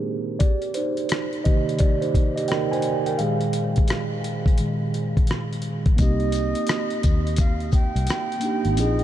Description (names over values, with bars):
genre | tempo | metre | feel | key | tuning
lo-fi hip hop | 86 BPM | 4/4 | swing 64% on 16ths | C minor | A4 = 435 Hz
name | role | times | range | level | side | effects
mellow tine electric piano | accompaniment | 0.0-9.0 s | Bb2 to Ab5 | -24 LUFS | right 2 dB | slow stereo tremolo, cassette tape, low-pass filter
dusty soul sampler-style drum kit | drums | 0.4-9.0 s | hi-hat, kick drum, rim click | -23 LUFS | left 1 dB | none
breathy mellow concert flute | melody | 6.0-9.0 s | Eb5 to G5 | -29 LUFS | equal | low-pass filter, ping-pong delay
vintage muted fingered electric bass | bass | 6.0-9.0 s | Ab1 to Eb2 | -24 LUFS | left 1 dB | none
maracas | percussion | 6.0-9.0 s | none | -42 LUFS | left 8 dB | none
room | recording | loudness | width
light reverb, digital ambience | none | -20 LUFS | side -12 dB against mid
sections
0.0-6.0 A section; 6.0-9.0 B section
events
tine electric piano solo 0.0-6.0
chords
0.4 Cm7; 3.2 Bb7sus4; 6.0 Cm7